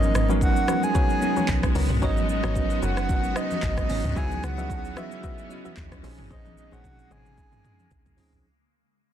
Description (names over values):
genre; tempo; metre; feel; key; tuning
amapiano; 112 BPM; 4/4; swing 55% on 16ths; G# minor; A4 = 441 Hz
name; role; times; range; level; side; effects
breathy flute-like synth lead; melody; 0.0-8.2 s; D#5 to G#5; -30 LUFS; right 1 dB; chorus, tape echo
bell-like tine electric piano; accompaniment; 0.0-8.5 s; E#3 to D#5; -30 LUFS; right 5 dB; fast stereo tremolo
granular cloud pad; sustained chords; 0.0-8.4 s; C#3 to F#4; -33 LUFS; left 3 dB; built-in reverb, sidechain pumping
deep log drum bass; bass; 0.0-8.4 s; F#1 to D#2; -28 LUFS; equal; none
deep house drum kit; drums; 0.0-8.4 s; handclaps, hi-hat, kick drum, rim click, shaker, toms; -27 LUFS; equal; none
congas; percussion; 0.0-8.3 s; none; -36 LUFS; left 5 dB; none
soft round pluck; stabs; 0.3-7.2 s; F#4 to E5; -36 LUFS; left 3 dB; chorus, tape echo
room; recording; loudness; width
little or no reverb; dense, heavily limited modern master; -22 LUFS; side -10 dB against mid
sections
0.0-8.4 A section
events
drop 0.0-8.4; fade-out 0.0-8.4; drum fill 6.3-8.4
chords
0.0 G#m11; 4.2 C#m11; 6.0 A#m11